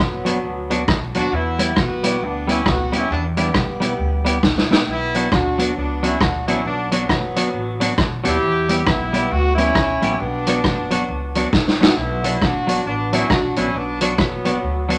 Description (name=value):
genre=ska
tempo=135 BPM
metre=4/4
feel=swing 61% on 8ths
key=B minor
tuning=A4 = 436 Hz
part: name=warm horn section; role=melody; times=0.0-15.0 s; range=F#3 to G4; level=-25 LUFS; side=equal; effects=none
part: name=upright bass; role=bass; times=0.0-15.0 s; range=F#1 to E2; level=-29 LUFS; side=equal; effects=none
part: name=semi-hollow electric guitar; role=accompaniment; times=0.2-15.0 s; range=F#3 to G4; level=-25 LUFS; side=equal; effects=spring reverb
part: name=street-band drum kit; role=drums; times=0.3-15.0 s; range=hi-hat, kick drum, rim click, snare drum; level=-22 LUFS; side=equal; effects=none
room=moderate studio ambience, RT60 0.5 s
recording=none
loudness=-19 LUFS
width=mono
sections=0.0-12.0 A section; 12.0-15.0 A section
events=drum fill 4.4-4.9, 11.5-12.0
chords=0.0 Bm; 1.3 Em; 4.9 Bm; 8.4 Em; 10.2 Bm